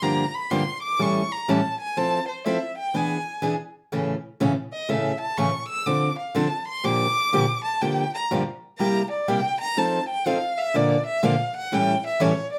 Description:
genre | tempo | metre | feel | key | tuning
jazz | 123 BPM | 4/4 | swing 65% on 8ths | unclear | A4 = 441 Hz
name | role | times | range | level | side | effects
rich violin | melody | 0.0-12.6 s | C5 to E6 | -28 LUFS | equal | plate reverb
picked steel-string acoustic guitar | accompaniment | 0.0-12.3 s | G2 to A4 | -25 LUFS | equal | none
room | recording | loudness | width
wet studio reverb, RT60 0.5 s | heard from further back in the room | -24 LUFS | mono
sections
0.0-12.6 A section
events
violin solo 0.0-12.6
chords
0.0 Gm7; 1.0 A7; 2.0 Fmaj7; 2.9 E7; 3.9 A; 5.9 Dm7; 6.8 Bb6; 7.8 Gm7; 8.8 C7; 9.8 F7; 10.7 Bbmaj7; 11.7 A7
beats
| 0.01 0.50 0.99 1.48 | 1.96 2.45 2.94 3.42 | 3.91 4.40 4.89 5.38 | 5.86 6.35 6.84 7.32 | 7.81 8.30 8.79 9.27 | 9.76 10.25 10.73 11.22 | 11.71 12.20

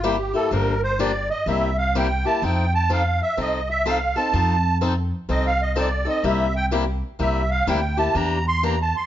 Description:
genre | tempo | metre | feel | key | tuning
acoustic string swing (jazz manouche) | 126 BPM | 4/4 | swing 64% on 8ths | C mixolydian | A4 = 440 Hz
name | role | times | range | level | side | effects
musette accordion | melody | 0.0-9.1 s | G4 to C6 | -23 LUFS | right 2 dB | slapback echo
picked swing-style acoustic guitar | accompaniment | 0.0-8.7 s | C3 to A4 | -25 LUFS | left 4 dB | none
upright bass | bass | 0.0-8.9 s | G1 to F2 | -24 LUFS | equal | none
room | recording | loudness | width
light reverb | nothing above 7.6 kHz | -19 LUFS | side -11 dB against mid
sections
0.0-9.1 A section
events
accordion solo 0.0-9.1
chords
0.0 C7; 0.5 Gm7; 1.5 C7; 2.4 F7; 6.2 C7; 8.2 Em7b5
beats
0.03 | 0.51 0.99 1.47 1.94 | 2.42 2.90 3.38 3.85 | 4.33 4.81 5.29 5.76 | 6.24 6.72 7.20 7.67 | 8.15 8.63

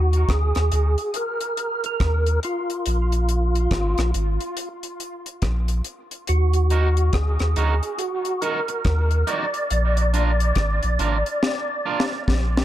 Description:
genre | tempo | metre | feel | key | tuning
dub reggae | 70 BPM | 4/4 | swing 62% on 16ths | Eb harmonic minor | A4 = 440 Hz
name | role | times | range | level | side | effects
percussive tonewheel organ | melody | 0.0-12.2 s | F4 to D5 | -25 LUFS | right 1 dB | chorus vibrato, slow rotary speaker, dub echo
warm sub bass | bass | 0.0-12.6 s | Ab1 to Eb2 | -20 LUFS | equal | none
deep reggae drum kit | drums | 0.1-12.6 s | hi-hat, kick drum, rim click, snare drum | -26 LUFS | left 1 dB | none
electric guitar at the edge of break-up | accompaniment | 6.7-12.2 s | D4 to Bb4 | -30 LUFS | right 6 dB | dub echo
room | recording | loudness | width
studio reverb | dark, warm production | -20 LUFS | side -13 dB against mid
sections
0.0-12.6 A section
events
break 0.0-6.3; drum fill 11.4-12.6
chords
0.0 Ebm; 2.9 Bb5; 6.3 Ebm; 9.7 Bb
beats
0.29 1.14 2.00 | 2.86 3.71 4.57 5.42 | 6.28 7.14 7.99 8.85 | 9.71 10.56 11.42 12.28

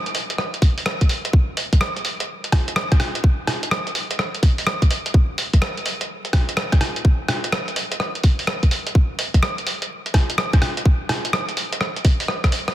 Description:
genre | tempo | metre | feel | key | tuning
future garage | 126 BPM | 4/4 | swing 65% on 16ths | none | none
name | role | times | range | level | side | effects
lo-fi sampler-style drum kit | drums | 0.1-12.7 s | hi-hat, rim click | -22 LUFS | equal | soft clipping on snare
electronic kick drum | drums | 0.6-12.5 s | none | -16 LUFS | equal | none
room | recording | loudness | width
light reverb | dense, heavily limited modern master, vinyl crackle | -18 LUFS | side -13 dB against mid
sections
0.0-12.7 A section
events
drum fill 12.3-12.7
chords
none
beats
0.38 0.86 | 1.33 1.81 2.29 2.76 | 3.24 3.71 4.19 4.67 | 5.14 5.62 6.09 6.57 | 7.05 7.52 8.00 8.48 | 8.95 9.43 9.90 10.38 | 10.86 11.33 11.81 12.29

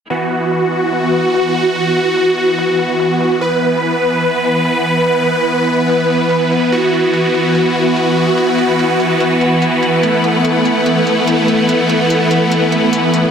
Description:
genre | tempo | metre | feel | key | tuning
heavy wobble dubstep | 145 BPM | 4/4 | swing 54% on 16ths, half-time | unclear | A4 = 440 Hz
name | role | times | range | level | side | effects
supersaw chords | sustained chords | 0.1-13.3 s | E3 to B4 | -12 LUFS | equal | phaser
electronic hi-hat | drums | 0.1-13.2 s | none | -30 LUFS | right 2 dB | none
clear symphonic string section | texture | 0.1-13.3 s | E4 to F#5 | -21 LUFS | left 1 dB | none
room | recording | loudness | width
moderate lush hall reverb, RT60 2.2 s | dense, heavily limited modern master | -12 LUFS | side -7 dB against mid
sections
0.1-13.3 A section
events
fade-in on string section 0.1-13.3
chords
0.1 Esus2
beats
| 0.10 0.52 0.93 1.34 | 1.76 2.17 2.58 3.00 | 3.41 3.83 4.24 4.65 | 5.07 5.48 5.89 6.31 | 6.72 7.14 7.55 7.96 | 8.38 8.79 9.21 9.62 | 10.03 10.45 10.86 11.27 | 11.69 12.10 12.52 12.93

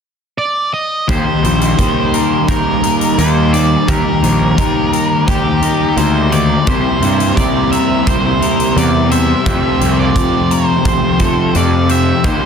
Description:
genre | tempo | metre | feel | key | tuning
rock, shoegaze and dream pop | 86 BPM | 4/4 | straight | unclear | A4 = 439 Hz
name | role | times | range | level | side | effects
octave-fuzz lead guitar | melody | 0.4-12.5 s | G4 to E5 | -19 LUFS | right 2 dB | distortion, slapback echo
chorused pulse-width pad | sustained chords | 1.1-12.5 s | Eb4 to D6 | -24 LUFS | right 2 dB | none
electric guitar through a small old amp | arpeggios | 1.1-12.5 s | G4 to Bb5 | -23 LUFS | left 2 dB | analog chorus, slapback echo
overdriven electric guitar | riff | 1.1-12.5 s | F2 to G4 | -19 LUFS | right 12 dB | reverse reverb
thick fuzz guitar | riff | 1.1-12.5 s | F2 to Eb4 | -16 LUFS | left 10 dB | distortion, wide subtle chorus
fuzz picked electric bass | bass | 1.1-12.4 s | Bb1 to G2 | -16 LUFS | equal | overdrive
huge arena drum kit | drums | 1.1-12.4 s | hi-hat, kick drum | -19 LUFS | equal | soft clipping on snare
room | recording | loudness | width
light reverb | dense, heavily limited modern master | -11 LUFS | side -6 dB against mid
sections
0.0-1.1 A section; 1.1-12.5 B section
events
none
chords
0.0 N.C.; 1.1 Ebmaj7; 6.7 C7; 9.5 Fadd9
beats
0.39 | 1.09 1.78 2.48 3.18 | 3.88 4.58 5.28 5.97 | 6.67 7.37 8.06 8.76 | 9.46 10.15 10.85 11.55 | 12.24

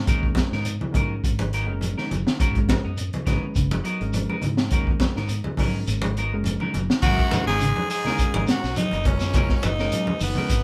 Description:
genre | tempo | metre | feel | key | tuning
afrobeat | 104 BPM | 4/4 | swing 54% on 16ths | G# minor | A4 = 440 Hz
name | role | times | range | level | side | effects
fingered electric bass | bass | 0.0-10.6 s | F#1 to G#2 | -30 LUFS | equal | none
barky tine electric piano | accompaniment | 0.1-10.5 s | G#3 to B4 | -36 LUFS | equal | none
clean electric guitar | stabs | 0.1-10.5 s | F#3 to A#4 | -34 LUFS | equal | none
crunchy breakbeat drum kit | drums | 0.1-10.6 s | crash cymbal, hi-hat, kick drum, snare drum | -26 LUFS | equal | none
congas | percussion | 0.1-10.6 s | none | -32 LUFS | equal | none
shekere | percussion | 0.1-10.6 s | none | -36 LUFS | equal | none
mellow electric guitar | arpeggios | 0.5-10.4 s | C#3 to G#3 | -33 LUFS | equal | none
raspy tenor saxophone | melody | 7.0-10.6 s | B3 to G#4 | -29 LUFS | equal | none
brilliant trombone section | second line | 7.0-10.6 s | B1 to G#2 | -38 LUFS | equal | none
room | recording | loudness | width
moderate studio reverb, RT60 0.5 s | band playing live in one room | -23 LUFS | mono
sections
0.0-7.0 A section; 7.0-10.6 B section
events
none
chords
0.0 G#m9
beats
| 0.08 0.66 1.24 1.82 | 2.40 2.98 3.56 4.14 | 4.72 5.30 5.88 6.46 | 7.04 7.61 8.19 8.77 | 9.35 9.93 10.50

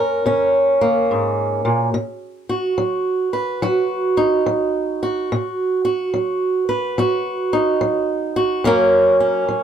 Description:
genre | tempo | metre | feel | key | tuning
blues | 72 BPM | 4/4 | swing 65% on 8ths | unclear | A4 = 440 Hz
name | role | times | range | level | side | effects
fingerpicked swing-style acoustic guitar | solo | 0.0-9.6 s | F#2 to B4 | -16 LUFS | right 1 dB | none
room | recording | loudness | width
little or no reverb | close, detailed microphones | -16 LUFS | side -8 dB against mid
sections
0.0-9.6 A section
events
none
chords
0.0 F# (rootless); 1.9 B; 8.6 F#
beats
0.27 1.10 | 1.94 2.78 3.62 4.46 | 5.30 6.13 6.97 7.81 | 8.64 9.48

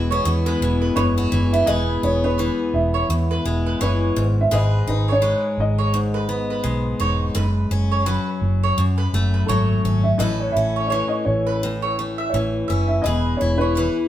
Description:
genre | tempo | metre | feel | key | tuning
acoustic pop | 84 BPM | 4/4 | swing 60% on 16ths | E major | A4 = 441 Hz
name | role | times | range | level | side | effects
picked steel-string acoustic guitar | accompaniment | 0.0-14.1 s | E2 to A4 | -23 LUFS | left 3 dB | none
vintage muted fingered electric bass | bass | 0.0-13.9 s | E1 to F#2 | -21 LUFS | right 1 dB | none
mandolin | arpeggios | 0.1-14.0 s | B4 to E5 | -27 LUFS | right 3 dB | none
dark upright piano | melody | 1.0-14.1 s | A4 to E5 | -24 LUFS | right 1 dB | none
room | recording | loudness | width
moderate stone room reverb, RT60 1.2 s | band playing live in one room | -18 LUFS | side -12 dB against mid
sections
0.0-1.7 A section; 1.7-14.1 B section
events
none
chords
0.0 Eadd9; 4.2 G#m; 7.3 F#madd9; 10.2 A; 13.0 E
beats
0.25 0.96 | 1.67 2.38 3.09 3.80 | 4.51 5.22 5.93 6.64 | 7.35 8.06 8.77 9.48 | 10.19 10.91 11.62 12.33 | 13.04 13.76

